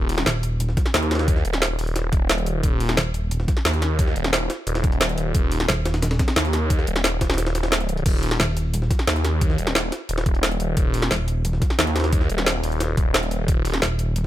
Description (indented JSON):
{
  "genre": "dark technical drum and bass",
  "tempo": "177 BPM",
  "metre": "4/4",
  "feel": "straight",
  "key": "unclear",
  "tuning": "A4 = 440 Hz",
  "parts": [
    { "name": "phased detuned saw bass", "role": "bass", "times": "0.0-13.8 s", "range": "Eb1 to Eb2", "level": "-22 LUFS", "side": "equal", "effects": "phaser, tube saturation, sidechain pumping" },
    { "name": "drum and bass drum kit", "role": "drums", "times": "0.1-14.2 s", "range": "crash cymbal, hi-hat, snare drum", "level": "-24 LUFS", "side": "equal", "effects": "overdrive" },
    { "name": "jungle sampler-style drum kit", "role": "drums", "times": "0.1-14.3 s", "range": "hi-hat, snare drum", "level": "-31 LUFS", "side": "equal", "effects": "high-pass filter on snare, high-pass filter on hats" },
    { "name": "pulsing pluck wobble bass", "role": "bass", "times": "0.3-0.8, 3.0-3.5, 5.7-6.2, 8.4-8.9, 11.1-11.6, 13.8-14.3 s", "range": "Eb1", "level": "-22 LUFS", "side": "equal", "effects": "chorus" },
    { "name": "electronic kick drum", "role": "drums", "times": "0.8-13.6 s", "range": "none", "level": "-21 LUFS", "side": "equal", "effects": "overdrive" }
  ],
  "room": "digital ambience",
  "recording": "none",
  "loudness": "-19 LUFS",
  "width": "side -13 dB against mid",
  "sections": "0.0-14.3 A section",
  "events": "kick drops out 7.4-8.1",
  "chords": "none",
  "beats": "0.26 0.60 0.94 | 1.28 1.62 1.96 2.30 | 2.63 2.97 3.31 3.65 | 3.99 4.33 4.67 5.01 | 5.35 5.69 6.03 6.36 | 6.70 7.04 7.38 7.72 | 8.06 8.40 8.74 9.07 | 9.41 9.75 10.09 10.43 | 10.77 11.11 11.45 11.79 | 12.13 12.46 12.80 13.14 | 13.48 13.82 14.16"
}